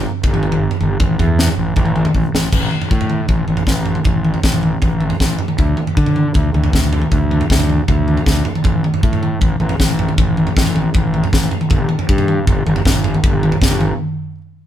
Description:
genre	math rock and midwest emo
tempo	157 BPM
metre	4/4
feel	straight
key	unclear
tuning	A4 = 440 Hz
part	fuzz fingered electric bass	bass	0.0-13.9 s	G1 to D3	-18 LUFS	left 1 dB	overdrive
part	crisp fusion drum kit	drums	0.2-13.9 s	crash cymbal, kick drum, snare drum, toms	-15 LUFS	equal	none
room	light reverb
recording	band playing live in one room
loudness	-13 LUFS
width	side -11 dB against mid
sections	0.0-2.5 A section; 2.5-14.7 B section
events	drum fill 2.1-2.5; break 14.0-14.7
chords	none

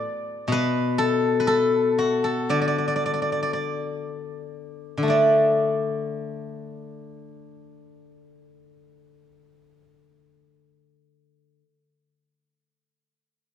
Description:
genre	chinese traditional, Chinese solo plucked strings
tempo	38-63 BPM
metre	2/4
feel	rubato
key	D gong mode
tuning	A4 = 442 Hz
part	steel-string zither	solo	0.0-11.6 s	B2 to D5	-22 LUFS	left 2 dB	none
room	moderate concert hall reverb, RT60 2.0 s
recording	dark, warm production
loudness	-20 LUFS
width	side -9 dB against mid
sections	0.0-5.1 A section; 5.1-11.0 B section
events	slowing down 0.5-5.1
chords	none

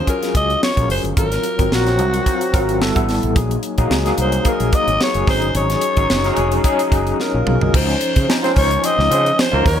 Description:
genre	polished 1980s jazz-funk pop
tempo	110 BPM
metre	4/4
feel	swing 54% on 16ths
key	Db major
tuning	A4 = 440 Hz
part	breathy alto saxophone	melody	0.0-9.8 s	Gb4 to Eb5	-20 LUFS	left 1 dB	none
part	overdriven tine electric piano	accompaniment	0.0-9.8 s	F3 to F5	-20 LUFS	left 2 dB	fast tremolo, analog chorus
part	tight funk drum kit	drums	0.1-9.8 s	crash cymbal, hi-hat, kick drum, snare drum, toms	-19 LUFS	equal	none
part	fretless electric bass	bass	0.3-9.8 s	F1 to Db3	-20 LUFS	equal	none
part	mellow horn section	second line	8.4-9.8 s	Gb3 to C5	-22 LUFS	right 4 dB	none
room	light reverb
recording	none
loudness	-14 LUFS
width	side -9 dB against mid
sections	0.0-7.7 A section; 7.7-9.8 B section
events	drum fill 7.2-7.7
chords	0.0 Ebm11; 1.2 Ab13; 2.8 G69; 3.4 Gb69/Bb; 5.3 Ab7sus4; 7.7 Dbmaj9

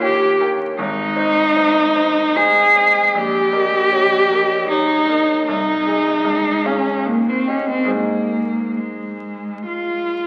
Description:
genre	classical, romantic duo for cello and grand piano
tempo	76 BPM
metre	3/4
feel	uneven beats, rubato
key	Ab major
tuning	A4 = 437 Hz
part	rich cello	melody	0.0-10.3 s	Ab3 to Ab4	-18 LUFS	equal	none
part	bright concert grand piano	accompaniment	0.0-10.3 s	Ab1 to G5	-24 LUFS	equal	none
room	wet recital hall reverb, RT60 1.6 s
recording	very old 78 rpm record, vinyl crackle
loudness	-17 LUFS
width	mono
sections	0.0-10.3 A section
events	none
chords	0.0 Eb7; 0.8 Ab; 3.1 Eb7/Bb; 5.5 Ab/C; 6.3 Dbadd9; 7.1 Eb; 7.9 Ab

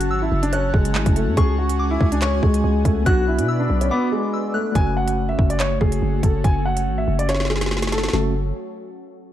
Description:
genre	hip hop, drill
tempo	142 BPM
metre	4/4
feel	half-time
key	F# minor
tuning	A4 = 440 Hz
part	dark baby grand piano	melody	0.0-8.3 s	G#3 to G#5	-24 LUFS	equal	low-pass filter
part	soft synth bell	second line	0.0-4.7 s	C#6 to F#6	-29 LUFS	left 2 dB	chorus, ping-pong delay
part	tine electric piano	accompaniment	0.0-8.3 s	F#3 to G#4	-28 LUFS	equal	medium stereo tremolo, low-pass filter
part	airy breathy pad	sustained chords	0.0-8.3 s	A3 to B5	-29 LUFS	left 1 dB	chorus, low-pass filter
part	growling 808-style bass	bass	0.0-8.5 s	F#1 to B2	-22 LUFS	equal	none
part	drill drum kit	drums	0.0-8.2 s	handclaps, hi-hat, kick drum, snare drum	-20 LUFS	equal	none
room	little or no reverb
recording	dark, warm production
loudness	-17 LUFS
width	side -12 dB against mid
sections	0.0-4.8 A section; 4.8-8.1 B section; 8.1-9.3 C section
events	break 3.9-4.8; drum fill 7.3-8.1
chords	0.0 F#m; 1.4 C#sus4; 3.1 Bm; 4.8 F#m

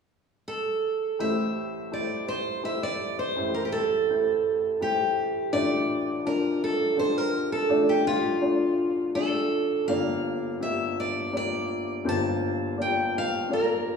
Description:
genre	folk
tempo	83 BPM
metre	3/4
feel	straight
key	unclear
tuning	A4 = 440 Hz
part	picked steel-string acoustic guitar	melody	0.5-14.0 s	F4 to A5	-26 LUFS	right 2 dB	none
part	warm upright piano	accompaniment	1.2-14.0 s	G1 to E5	-27 LUFS	left 3 dB	none
room	wet recital hall reverb, RT60 1.3 s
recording	recorded in a church or concert hall, small room reverb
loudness	-24 LUFS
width	side -5 dB against mid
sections	0.0-1.2 A section; 1.2-14.0 B section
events	none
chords	0.0 N.C.; 1.2 Am7; 5.5 Dm/A; 9.9 Gm7

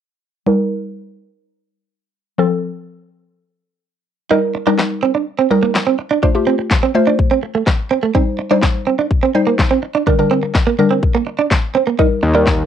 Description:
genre	dance-pop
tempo	125 BPM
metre	4/4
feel	straight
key	unclear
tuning	A4 = 443 Hz
part	mallet-like synth pluck	accompaniment	0.5-12.7 s	D3 to C5	-16 LUFS	left 2 dB	chorus, phaser, sidechain pumping, low-pass filter
part	direct-recorded clean electric guitar	riff	4.3-12.5 s	A3 to Eb4	-17 LUFS	right 7 dB	lush chorus
part	house drum kit	drums	4.8-12.6 s	handclaps, kick drum, snare drum	-15 LUFS	left 2 dB	cassette tape
part	fat analog bass	bass	12.2-12.6 s	Eb2	-15 LUFS	left 2 dB	sidechain pumping
room	moderate small room reverb, RT60 0.5 s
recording	home recording on cassette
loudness	-13 LUFS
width	side -9 dB against mid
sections	0.5-4.3 A section; 4.3-12.7 B section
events	filter sweep on synth pluck 0.5-4.3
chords	0.5 Eb; 2.4 F; 4.3 Eb; 6.2 F; 8.1 Cm; 10.1 Gm/D; 12.0 Eb

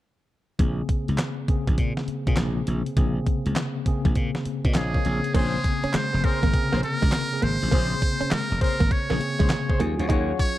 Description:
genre	R&B, new jack swing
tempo	101 BPM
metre	4/4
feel	swing 65% on 16ths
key	Bb minor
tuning	A4 = 440 Hz
part	mellow tine electric piano	accompaniment	0.6-10.6 s	C3 to F5	-28 LUFS	left 2 dB	medium stereo tremolo
part	glassy slap bass	bass	0.6-10.3 s	F1 to Bb2	-26 LUFS	equal	none
part	clean 12-bit digital drum machine	drums	0.6-10.6 s	crash cymbal, handclaps, hi-hat, kick drum, snare drum	-24 LUFS	equal	none
part	trumpet with metal mute	melody	4.8-10.6 s	Ab4 to Db5	-28 LUFS	right 1 dB	slapback echo
part	direct-recorded clean electric guitar	riff	5.3-10.4 s	Ab3 to Eb4	-31 LUFS	right 5 dB	wide subtle chorus
part	mellow horn section	stabs	5.3-10.4 s	Db4 to Db5	-33 LUFS	left 6 dB	slapback echo
room	light reverb, digital ambience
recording	dark, warm production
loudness	-21 LUFS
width	side -15 dB against mid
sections	0.6-5.3 A section; 5.3-10.6 B section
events	none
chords	0.6 Bbm9; 9.8 Ebm11

